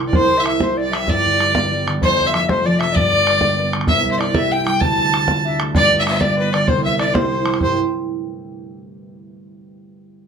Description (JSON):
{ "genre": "celtic folk, Celtic jig", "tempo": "128 BPM (dotted quarters)", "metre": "6/8", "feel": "straight", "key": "C major", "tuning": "A4 = 440 Hz", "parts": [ { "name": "concert harp", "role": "accompaniment", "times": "0.0-9.0 s", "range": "F1 to G4", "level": "-21 LUFS", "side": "right 2 dB", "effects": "none" }, { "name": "rich fiddle", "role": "melody", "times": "0.1-7.8 s", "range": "B4 to A5", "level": "-18 LUFS", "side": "right 2 dB", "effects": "none" }, { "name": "bright reedy wooden flute", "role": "second line", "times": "0.1-7.8 s", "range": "C5 to A5", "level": "-22 LUFS", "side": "left 5 dB", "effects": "none" }, { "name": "bodhran", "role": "percussion", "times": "0.1-7.8 s", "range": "none", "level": "-21 LUFS", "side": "right 1 dB", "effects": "none" } ], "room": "moderate studio reverb, RT60 0.5 s", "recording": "none", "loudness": "-14 LUFS", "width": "side -6 dB against mid", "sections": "0.1-7.6 A section", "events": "none", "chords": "0.1 C; 1.1 G; 2.0 F; 2.9 G; 3.9 C; 4.8 Dm; 5.7 G; 6.7 C", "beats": "| 0.13 0.60 | 1.07 1.54 | 2.01 2.48 | 2.94 3.41 | 3.88 4.35 | 4.82 5.28 | 5.75 6.21 | 6.68 7.15 | 7.61 8.08" }